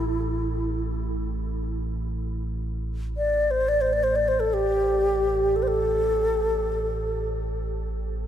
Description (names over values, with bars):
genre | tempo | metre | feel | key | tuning
world meditative, free-time meditation music | free time | none | none | A minor pentatonic | A4 = 440 Hz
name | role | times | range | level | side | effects
breathy xiao | melody | 0.0-7.3 s | E4 to D5 | -24 LUFS | equal | ping-pong delay
deep rumbling drone | drone | 0.0-8.3 s | A1 | -29 LUFS | right 1 dB | built-in reverb, wide subtle chorus
room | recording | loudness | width
wet huge ambient reverb, RT60 8.1 s | none | -23 LUFS | side -10 dB against mid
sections
0.0-8.3 A section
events
none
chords
none